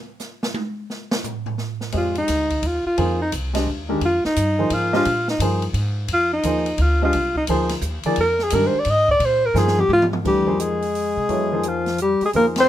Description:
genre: modal jazz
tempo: 173 BPM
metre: 3/4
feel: swing 65% on 8ths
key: F dorian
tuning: A4 = 437 Hz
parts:
  - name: open jazz drum kit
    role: drums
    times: 0.2-12.6 s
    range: crash cymbal, hi-hat, kick drum, ride cymbal, snare drum, toms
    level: -29 LUFS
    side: right 1 dB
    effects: none
  - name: warm baby grand piano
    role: accompaniment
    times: 1.9-12.7 s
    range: Eb3 to Eb5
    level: -23 LUFS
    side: equal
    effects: none
  - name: upright bass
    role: bass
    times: 1.9-12.7 s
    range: C2 to C3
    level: -24 LUFS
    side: equal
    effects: none
  - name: warm alto saxophone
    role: melody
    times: 2.0-12.7 s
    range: Eb4 to Eb5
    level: -19 LUFS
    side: equal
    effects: none
  - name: warm bass clarinet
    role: second line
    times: 10.2-12.7 s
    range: F3 to C4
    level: -24 LUFS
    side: left 5 dB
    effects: none
room: light reverb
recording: minimal, uncompressed stereo recording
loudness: -18 LUFS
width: side -12 dB against mid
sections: 0.0-1.9 A section; 1.9-10.2 A section; 10.2-12.7 B section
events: drum solo 0.0-1.9; alto saxophone solo 1.9-10.2; drum fill 9.6-10.2; band accent 12.5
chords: 0.0 N.C.; 1.9 Fm9; 4.0 Absus2/F; 6.1 Fm7; 8.2 Absus2/F; 10.2 Fm9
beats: 0.20 0.55 | 0.90 1.25 1.59 | 1.94 2.29 2.63 | 2.98 3.33 3.67 | 4.02 4.37 4.71 | 5.06 5.40 5.75 | 6.10 6.44 6.79 | 7.13 7.48 7.83 | 8.17 8.52 8.87 | 9.21 9.56 9.90 | 10.25 10.60 10.94 | 11.29 11.64 11.99 | 12.33 12.68

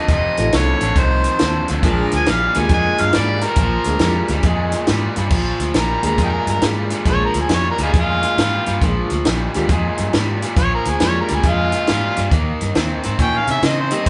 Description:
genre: electric blues shuffle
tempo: 137 BPM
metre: 4/4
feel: swing 65% on 8ths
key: Bb mixolydian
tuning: A4 = 440 Hz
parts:
  - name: overdriven harmonica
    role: melody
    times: 0.0-14.1 s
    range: Eb4 to Ab5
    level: -22 LUFS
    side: equal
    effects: none
  - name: overdriven electric guitar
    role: riff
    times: 0.0-14.1 s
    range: F2 to Db4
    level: -24 LUFS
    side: equal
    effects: none
  - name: vintage muted fingered electric bass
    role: bass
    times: 0.1-14.1 s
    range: F1 to Db3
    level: -24 LUFS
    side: equal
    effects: none
  - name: compact cocktail drum kit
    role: drums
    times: 0.1-14.1 s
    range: crash cymbal, hi-hat, kick drum, snare drum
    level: -23 LUFS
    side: equal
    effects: none
  - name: overdriven reed electric piano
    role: accompaniment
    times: 0.4-14.1 s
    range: G3 to A4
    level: -27 LUFS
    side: equal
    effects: fast tremolo
  - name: warm horn section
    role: stabs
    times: 1.8-3.5 s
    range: D4 to Bb4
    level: -29 LUFS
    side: equal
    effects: none
room: moderate large studio reverb, RT60 0.9 s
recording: band playing live in one room, nothing above 11.0 kHz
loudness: -18 LUFS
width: mono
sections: 0.0-5.3 A section; 5.3-14.1 B section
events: harmonica solo 5.3-14.1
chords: 0.0 F7; 1.8 Bb7; 12.3 Eb7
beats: | 0.09 0.53 0.96 1.40 | 1.84 2.27 2.71 3.14 | 3.58 4.02 4.45 4.89 | 5.33 5.76 6.20 6.64 | 7.07 7.51 7.95 8.39 | 8.82 9.26 9.70 10.14 | 10.57 11.01 11.45 11.89 | 12.32 12.76 13.20 13.64 | 14.07

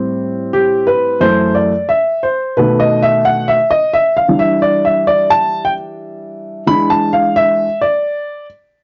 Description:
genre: hip hop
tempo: 88 BPM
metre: 4/4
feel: swing 65% on 16ths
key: unclear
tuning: A4 = 439 Hz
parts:
  - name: dark upright piano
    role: solo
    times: 0.0-8.5 s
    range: F#2 to B5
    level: -14 LUFS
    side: equal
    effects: none
room: light reverb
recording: dry, gritty hardware recording, transformer saturation, nothing above 7.5 kHz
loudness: -14 LUFS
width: mono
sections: 0.0-8.8 A section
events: upright piano solo 0.0-8.8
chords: 0.0 Am7; 1.2 F#m7b5; 2.6 B7; 3.9 Em7; 6.7 E7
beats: 0.53 | 1.21 1.90 2.58 3.26 | 3.94 4.62 5.30 5.99 | 6.67 7.35 8.03

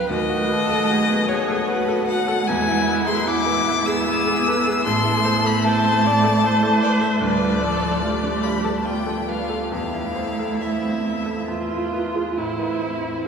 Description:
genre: classical, slow romantic movement for piano quartet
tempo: 67-78 BPM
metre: 3/4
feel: rubato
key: A minor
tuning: A4 = 438 Hz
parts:
  - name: rich violin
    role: melody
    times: 0.0-13.3 s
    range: B4 to E6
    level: -23 LUFS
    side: left 4 dB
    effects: none
  - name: dark cello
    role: second line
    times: 0.0-13.3 s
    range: F3 to F4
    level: -24 LUFS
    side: right 3 dB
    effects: none
  - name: clear grand piano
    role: accompaniment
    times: 0.0-13.3 s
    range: A1 to D5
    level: -25 LUFS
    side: equal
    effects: none
  - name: warm viola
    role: accompaniment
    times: 0.0-13.3 s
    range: E4 to D5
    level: -26 LUFS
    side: right 2 dB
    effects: none
room: wet cathedral reverb, RT60 7.1 s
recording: recorded in a church or concert hall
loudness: -18 LUFS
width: side -6 dB against mid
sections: 0.0-12.4 A section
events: none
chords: 0.1 B7/D#; 2.5 E; 4.9 Am; 7.2 Dm; 9.7 Am/E; 11.5 E; 12.4 Am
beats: | 0.12 0.91 1.70 | 2.49 3.28 4.08 | 4.87 5.66 6.44 | 7.22 8.04 8.86 | 9.73 10.62 11.49 | 12.38 13.26

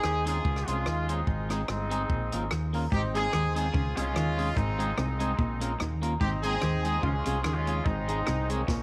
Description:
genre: ska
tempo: 146 BPM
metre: 4/4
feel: swing 55% on 8ths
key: Ab major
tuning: A4 = 440 Hz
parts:
  - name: clear horn section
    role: melody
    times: 0.0-8.8 s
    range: F3 to Ab4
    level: -34 LUFS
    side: equal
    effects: tape echo
  - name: fingered electric bass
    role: bass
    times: 0.0-8.8 s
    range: G1 to Eb2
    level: -33 LUFS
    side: equal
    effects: none
  - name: compact cocktail drum kit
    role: drums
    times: 0.0-8.8 s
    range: hi-hat, kick drum, rim click, snare drum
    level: -35 LUFS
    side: equal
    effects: none
  - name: clean electric guitar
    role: accompaniment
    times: 0.3-8.7 s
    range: Ab3 to Bb4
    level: -37 LUFS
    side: equal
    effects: spring reverb, tape echo
  - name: electric guitar at the edge of break-up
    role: riff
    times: 2.9-8.8 s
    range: Ab2 to Eb3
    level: -37 LUFS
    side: equal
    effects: tape echo
room: light reverb, studio ambience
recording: none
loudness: -29 LUFS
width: mono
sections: 0.0-8.8 A section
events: none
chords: 0.4 Db; 1.3 Ab; 2.1 Bbm; 2.9 Ab; 3.7 Db; 4.6 Ab; 5.4 Bbm; 6.2 Ab; 7.0 Db; 7.9 Ab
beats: 0.04 0.45 0.86 | 1.27 1.68 2.09 2.50 | 2.92 3.33 3.74 4.15 | 4.56 4.97 5.39 5.80 | 6.21 6.62 7.04 7.45 | 7.86 8.27 8.68

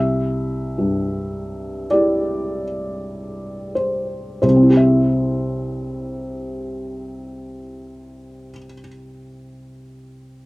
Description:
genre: classical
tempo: 45-57 BPM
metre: 4/4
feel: rubato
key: C major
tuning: A4 = 439 Hz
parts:
  - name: felt-muted upright piano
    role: accompaniment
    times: 0.0-10.5 s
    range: C2 to E5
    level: -19 LUFS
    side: equal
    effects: slapback echo
room: light reverb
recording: recorded outdoors, with no room sound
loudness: -18 LUFS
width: side -22 dB against mid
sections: 0.0-4.4 A section; 4.4-9.7 B section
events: slowing down 0.0-4.4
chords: 0.0 C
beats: 0.77 1.91 3.12 | 4.42 5.75 7.08 8.40

